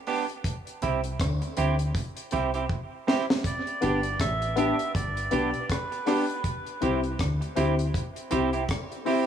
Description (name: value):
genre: dub reggae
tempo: 80 BPM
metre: 4/4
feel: swing 59% on 16ths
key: unclear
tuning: A4 = 440 Hz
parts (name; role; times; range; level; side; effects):
- semi-hollow electric guitar; accompaniment; 0.1-9.2 s; B3 to G4; -30 LUFS; right 7 dB; vibrato effect, dub echo
- deep reggae drum kit; drums; 0.1-9.3 s; hi-hat, kick drum, rim click, snare drum; -30 LUFS; equal; dub echo
- deep dub fingered electric bass; bass; 0.8-8.6 s; G1 to D2; -29 LUFS; equal; none
- melodica; melody; 3.5-6.4 s; B4 to E5; -32 LUFS; right 2 dB; dub echo
- dark grand piano; stabs; 3.8-9.2 s; B3 to G4; -29 LUFS; left 5 dB; dub echo
room: light reverb, small room ambience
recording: none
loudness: -25 LUFS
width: side -9 dB against mid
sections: 0.0-9.3 A section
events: break 0.0-3.4; drum fill 2.7-3.4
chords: 0.4 C; 3.4 G; 6.4 C